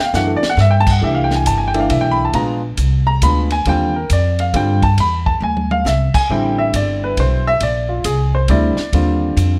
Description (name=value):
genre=jazz piano trio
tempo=137 BPM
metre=3/4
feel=swing 65% on 8ths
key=C major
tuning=A4 = 444 Hz
part: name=warm upright piano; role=melody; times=0.0-9.6 s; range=D3 to B5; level=-19 LUFS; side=equal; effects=none
part: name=upright bass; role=bass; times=0.1-9.6 s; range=G1 to G2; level=-19 LUFS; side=equal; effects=none
part: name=compact cocktail drum kit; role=drums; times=0.1-9.5 s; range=crash cymbal, hi-hat, kick drum, ride cymbal, snare drum, toms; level=-25 LUFS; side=equal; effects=none
room=light reverb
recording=none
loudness=-16 LUFS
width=mono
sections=0.0-1.0 A section; 1.0-9.6 A section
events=drum fill 0.0-0.6, 5.4-5.8; upright piano solo 0.0-9.6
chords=0.0 Gmaj7(no3); 1.0 C6; 2.3 Bb7b9; 3.7 Ebmaj7; 5.0 Cadd9; 6.3 Am9; 7.6 Bbadd9; 8.9 Ebmaj9